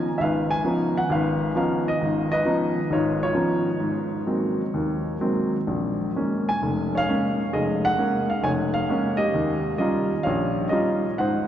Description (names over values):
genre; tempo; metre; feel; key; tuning
solo jazz; 132 BPM; 4/4; swing 67% on 8ths, rubato; unclear; A4 = 440 Hz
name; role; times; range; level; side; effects
warm baby grand piano; solo; 0.0-11.5 s; F1 to Ab5; -21 LUFS; equal; none
room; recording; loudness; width
wet cathedral reverb, RT60 6.4 s; recorded in a church or concert hall, nothing above 7.7 kHz; -21 LUFS; side -10 dB against mid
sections
0.0-11.5 A section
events
none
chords
0.0 Db9; 3.8 Ab9; 5.7 Bbm7; 9.3 Eb9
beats
| 0.21 0.66 1.11 1.56 | 2.01 2.46 2.92 3.37 | 3.83 4.29 4.75 5.22 | 5.70 6.16 6.63 7.09 | 7.54 7.99 8.44 8.89 | 9.34 9.79 10.25 10.71 | 11.18